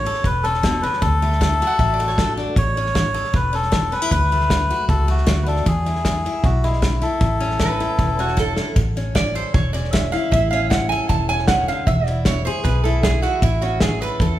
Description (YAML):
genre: honky-tonk and classic country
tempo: 155 BPM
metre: 4/4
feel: straight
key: A major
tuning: A4 = 440 Hz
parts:
  - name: melodica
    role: melody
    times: 0.0-8.5 s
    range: E4 to C#5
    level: -22 LUFS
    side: left 2 dB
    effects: none
  - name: picked steel-string acoustic guitar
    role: accompaniment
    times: 0.0-14.4 s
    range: A2 to A4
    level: -26 LUFS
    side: left 2 dB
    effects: none
  - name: vintage muted fingered electric bass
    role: bass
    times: 0.0-14.4 s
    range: E1 to E2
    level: -22 LUFS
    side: equal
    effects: none
  - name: natural country drum kit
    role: drums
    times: 0.0-14.3 s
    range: hi-hat, kick drum, snare drum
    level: -22 LUFS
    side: equal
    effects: none
  - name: lap resonator guitar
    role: second line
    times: 1.7-2.5, 7.6-14.4 s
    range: E4 to A5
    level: -23 LUFS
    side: right 5 dB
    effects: none
room: moderate recital hall reverb, RT60 1.6 s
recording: recorded in a church or concert hall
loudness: -17 LUFS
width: side -13 dB against mid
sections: 0.0-8.8 A section; 8.8-14.4 B section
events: drum fill 8.4-8.8; resonator guitar played with a steel bar solo 8.8-14.4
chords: 0.0 A; 1.0 D; 2.6 A; 4.1 D; 5.7 E; 7.2 A; 11.9 E; 13.4 A